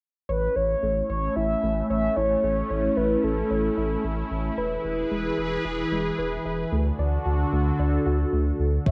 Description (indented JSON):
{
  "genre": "synth-pop",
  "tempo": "112 BPM",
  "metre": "4/4",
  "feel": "straight",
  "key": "A major",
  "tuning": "A4 = 437 Hz",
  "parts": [
    { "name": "mellow horn-like synth lead", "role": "melody", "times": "0.3-4.0, 8.9 s", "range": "A4 to E5", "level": "-28 LUFS", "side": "equal", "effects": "chorus, cassette tape" },
    { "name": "phased analog pad", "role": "sustained chords", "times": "0.5-8.9 s", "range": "D3 to B4", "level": "-29 LUFS", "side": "equal", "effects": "phaser, chorus, cassette tape" },
    { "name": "soft round pluck", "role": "arpeggios", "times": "0.3-8.9 s", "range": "G#3 to D5", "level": "-35 LUFS", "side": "equal", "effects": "chorus, cassette tape, analog delay" },
    { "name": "round analog bass", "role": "bass", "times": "0.3-8.9 s", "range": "E1 to D2", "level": "-30 LUFS", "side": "equal", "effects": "none" },
    { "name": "electronic kick drum", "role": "drums", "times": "8.9 s", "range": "none", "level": "-21 LUFS", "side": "equal", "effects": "none" }
  ],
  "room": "moderate spring reverb, RT60 1.6 s",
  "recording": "home recording on cassette",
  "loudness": "-25 LUFS",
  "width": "mono",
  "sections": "0.3-8.9 A section",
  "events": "none",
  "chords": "0.3 A; 4.6 E; 6.7 D",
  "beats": "| 0.29 0.83 1.36 1.90 | 2.43 2.97 3.51 4.04 | 4.58 5.11 5.65 6.18 | 6.72 7.26 7.79 8.33 | 8.86"
}